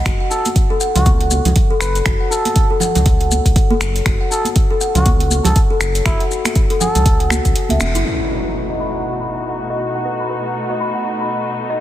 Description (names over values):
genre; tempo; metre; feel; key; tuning
afro house; 120 BPM; 4/4; swing 59% on 16ths; F# dorian; A4 = 439 Hz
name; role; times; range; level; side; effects
kalimba; arpeggios; 0.1-11.8 s; C#4 to B5; -21 LUFS; left 2 dB; sidechain pumping, low-pass filter, digital delay
round analog bass; bass; 0.1-8.0 s; E1 to C#2; -18 LUFS; equal; sidechain pumping
afro-pop drum kit; drums; 0.1-8.0 s; finger snaps, hi-hat; -23 LUFS; right 1 dB; low-pass filter on hats, studio reverb, soft clipping on snare, low-pass filter on snare
electronic kick drum; drums; 0.1-7.5 s; none; -15 LUFS; equal; studio reverb
maracas; percussion; 0.1-8.0 s; none; -25 LUFS; left 5 dB; none
trumpet with cup mute; melody; 0.3-7.2 s; E4 to B4; -24 LUFS; right 2 dB; digital delay
congas; percussion; 0.5-7.9 s; none; -23 LUFS; right 4 dB; none
dark chamber string section; sustained chords; 8.1-11.8 s; B2 to F#4; -23 LUFS; left 2 dB; sidechain pumping, low-pass filter
impact; sound effects; 8.1-10.1 s; none; -27 LUFS; equal; none
room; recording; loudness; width
light reverb, studio reverb; dense, heavily limited modern master; -14 LUFS; side -12 dB against mid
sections
0.0-8.1 A section; 8.1-11.8 B section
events
break 7.6-8.1; band accent 7.8; impact 8.1-10.1; filter sweep on string section 8.1-11.8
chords
0.1 F#5; 8.1 B7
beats
| 0.06 0.56 1.06 1.56 | 2.06 2.56 3.06 3.56 | 4.06 4.56 5.06 5.56 | 6.06 6.56 7.06 7.56 | 8.06 8.56 9.06 9.56 | 10.06 10.56 11.06 11.56